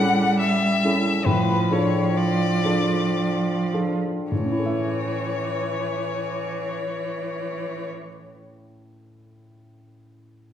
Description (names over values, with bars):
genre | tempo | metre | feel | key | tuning
classical, slow romantic movement for piano trio | 50-71 BPM | 3/4 | rubato | A major | A4 = 444 Hz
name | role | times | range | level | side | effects
rich violin | melody | 0.0-7.9 s | B4 to F#5 | -26 LUFS | left 5 dB | none
clear cello | second line | 0.0-7.9 s | E3 to G3 | -25 LUFS | right 3 dB | none
warm baby grand piano | accompaniment | 0.0-10.5 s | A2 to E5 | -25 LUFS | left 1 dB | none
room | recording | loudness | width
wet recital hall reverb, RT60 1.5 s | recorded in a church or concert hall | -21 LUFS | side -10 dB against mid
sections
0.0-4.3 A section; 4.3-7.7 B section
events
slowing down 0.0-4.3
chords
0.0 A7; 1.3 Dm/A; 4.3 A